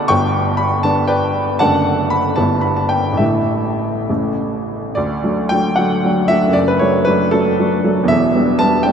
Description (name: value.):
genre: classical, romantic character piece for solo piano.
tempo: 67-80 BPM (dotted quarters).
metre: 6/8.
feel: rubato.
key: D major.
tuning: A4 = 440 Hz.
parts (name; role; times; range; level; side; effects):
clear upright piano; solo; 0.0-8.9 s; E1 to D6; -14 LUFS; equal; none.
room: wet cathedral reverb, RT60 6.8 s.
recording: in a vast, echoing space.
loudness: -14 LUFS.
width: side -7 dB against mid.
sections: 0.0-5.0 A section; 5.0-8.9 B section.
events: none.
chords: 0.1 G; 1.6 D/F#; 2.4 Em7/G; 3.2 Asus4; 4.1 A; 5.0 D; 6.5 D/F#; 8.1 Em7.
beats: | 0.09 0.84 | 1.61 2.38 | 3.20 4.08 | 4.95 5.77 | 6.54 7.31 | 8.09 8.86.